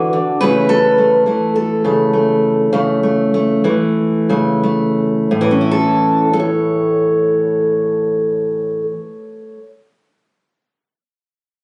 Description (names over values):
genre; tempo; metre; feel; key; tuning
folk, solo fingerstyle acoustic guitar; 86-106 BPM; 4/4; straight; A major; A4 = 440 Hz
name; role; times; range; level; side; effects
fingerpicked steel-string acoustic guitar; solo; 0.0-9.6 s; A2 to C#5; -16 LUFS; equal; none
room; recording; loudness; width
light reverb; recorded on a phone in the room, club reverb, nothing above 10.7 kHz; -15 LUFS; mono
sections
0.0-5.3 A section; 5.3-8.1 B section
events
slowing down 0.4-5.3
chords
0.4 Aadd9/C#; 5.3 A